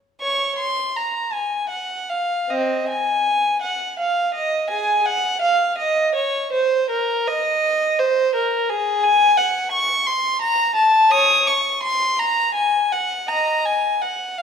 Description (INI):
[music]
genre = classical, baroque-style suite movement for unaccompanied violin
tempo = 49-58 BPM (dotted quarters)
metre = 6/8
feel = rubato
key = Bb minor from 9.0 s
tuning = A4 = 440 Hz
[part]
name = rich violin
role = solo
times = 0.2-14.4 s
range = C4 to Eb6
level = -17 LUFS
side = equal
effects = none
[sound]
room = moderate recital hall reverb, RT60 1.6 s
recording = minimal, uncompressed stereo recording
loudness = -17 LUFS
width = side -7 dB against mid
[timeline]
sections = 0.2-14.4 A section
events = none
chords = none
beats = | 0.21 1.34 | 2.50 3.63 | 4.70 5.78 | 6.90 8.01 | 9.04 10.07 | 11.13 12.19 | 13.28 14.38